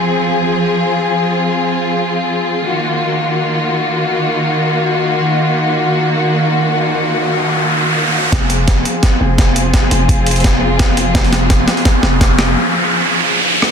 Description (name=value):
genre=half-time drum and bass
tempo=free time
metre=none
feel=none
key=F phrygian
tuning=A4 = 440 Hz
part: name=rich studio string section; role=sustained chords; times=0.0-13.7 s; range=Eb3 to Ab4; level=-15 LUFS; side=left 1 dB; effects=vintage 12-bit sampler grit, sidechain pumping, low-pass filter
part: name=riser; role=sound effects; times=6.4-13.7 s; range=none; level=-18 LUFS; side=right 1 dB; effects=none
part: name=growling 808-style bass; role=bass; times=8.3-12.6 s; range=F1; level=-17 LUFS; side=equal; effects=none
part: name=boom bap sampler-style drum kit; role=drums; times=8.3-13.7 s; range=hi-hat, rim click, snare drum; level=-16 LUFS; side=equal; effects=none
part: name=electronic kick drum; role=drums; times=8.3-12.3 s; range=none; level=-13 LUFS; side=equal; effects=none
room=moderate huge ambient reverb, RT60 7.8 s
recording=dense, heavily limited modern master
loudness=-12 LUFS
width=side -7 dB against mid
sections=0.0-8.3 A section; 8.3-13.7 B section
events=riser 6.4-8.3, 8.3-13.7; build-up 8.3-13.7; drum fill 8.3-12.6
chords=0.0 Fm; 2.7 Ebm; 8.3 Fm